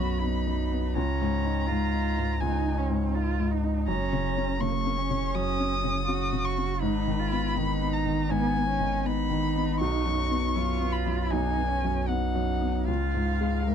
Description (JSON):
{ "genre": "neoclassical piano and strings", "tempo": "81 BPM", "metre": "4/4", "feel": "rubato", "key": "F# major", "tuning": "A4 = 439 Hz", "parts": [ { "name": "muted violin", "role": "melody", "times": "0.0-13.7 s", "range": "E#5 to D#6", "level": "-32 LUFS", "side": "left 3 dB", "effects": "none" }, { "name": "muted cello", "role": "second line", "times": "0.0-13.7 s", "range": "A#3 to A#4", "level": "-32 LUFS", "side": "right 8 dB", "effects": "none" }, { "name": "felt-muted upright piano", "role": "accompaniment", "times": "0.0-13.7 s", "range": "B1 to D#4", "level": "-29 LUFS", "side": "left 3 dB", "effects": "none" }, { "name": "warm sub bass", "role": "bass", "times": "0.0-13.7 s", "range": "F#1 to C#2", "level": "-30 LUFS", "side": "right 1 dB", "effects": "none" } ], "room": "light reverb", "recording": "dark, warm production", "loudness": "-25 LUFS", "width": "side -8 dB against mid", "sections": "0.0-13.7 A section", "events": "none", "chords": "0.0 B; 1.0 C#add9; 3.9 F#; 6.8 G#m; 9.8 B; 12.9 C#", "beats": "0.22 | 0.96 1.69 2.41 3.14 | 3.88 4.61 5.34 6.07 | 6.82 7.56 8.31 9.06 | 9.81 10.56 11.32 12.09 | 12.88 13.68" }